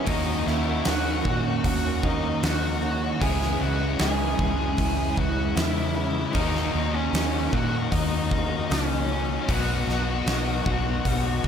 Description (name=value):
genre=rock, shoegaze and dream pop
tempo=77 BPM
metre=4/4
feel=straight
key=unclear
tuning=A4 = 438 Hz
part: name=octave-fuzz lead guitar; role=melody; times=0.0-11.5 s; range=C#4 to G#4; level=-30 LUFS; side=equal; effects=distortion, digital delay
part: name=picked twelve-string acoustic guitar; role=arpeggios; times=0.0-11.5 s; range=E3 to D#4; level=-37 LUFS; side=right 7 dB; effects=none
part: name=electric guitar through a small old amp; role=riff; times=0.0-11.5 s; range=B2 to F#4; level=-34 LUFS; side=right 12 dB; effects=reverse reverb
part: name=raw garage guitar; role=riff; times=0.0-11.5 s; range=B2 to F#4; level=-31 LUFS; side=left 10 dB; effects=overdrive, lush chorus
part: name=sludgy distorted guitar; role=riff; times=0.1-11.5 s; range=B2 to D#4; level=-31 LUFS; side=equal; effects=overdrive
part: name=vintage muted fingered electric bass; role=bass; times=0.1-11.5 s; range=B1 to A#2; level=-28 LUFS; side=equal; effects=none
part: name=huge arena drum kit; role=drums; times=0.1-11.5 s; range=hi-hat, kick drum, snare drum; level=-28 LUFS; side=equal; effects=none
room=small room ambience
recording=none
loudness=-22 LUFS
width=side -8 dB against mid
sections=0.0-11.5 A section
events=none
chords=0.1 D#m7; 3.2 C#m7; 6.3 D#m7; 9.5 Bmaj7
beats=| 0.07 0.86 1.64 2.43 | 3.21 4.00 4.78 5.56 | 6.35 7.13 7.91 8.70 | 9.48 10.26 11.05